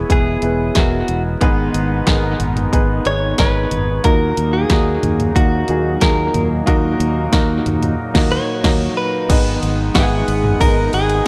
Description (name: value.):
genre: piano-driven pop.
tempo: 91 BPM.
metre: 4/4.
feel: straight.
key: G# minor.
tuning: A4 = 439 Hz.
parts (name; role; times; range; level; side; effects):
direct-recorded clean electric guitar; melody; 0.0-11.3 s; F#4 to C#5; -22 LUFS; equal; spring reverb, analog delay.
warm upright piano; accompaniment; 0.0-11.3 s; G#2 to F#5; -23 LUFS; equal; analog delay.
chorused pulse-width pad; sustained chords; 0.0-11.3 s; A#2 to E4; -29 LUFS; equal; none.
fingered electric bass; bass; 0.0-11.2 s; E1 to D#2; -22 LUFS; equal; none.
house drum kit; drums; 0.1-11.2 s; crash cymbal, hi-hat, kick drum, ride cymbal, snare drum, toms; -20 LUFS; equal; none.
room: light reverb.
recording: echo-heavy mix.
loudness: -16 LUFS.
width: mono.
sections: 0.0-9.3 A section; 9.3-11.3 B section.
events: band accent 8.0-9.3.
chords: 0.0 E; 1.4 G#m; 4.0 D#m; 9.3 G#m.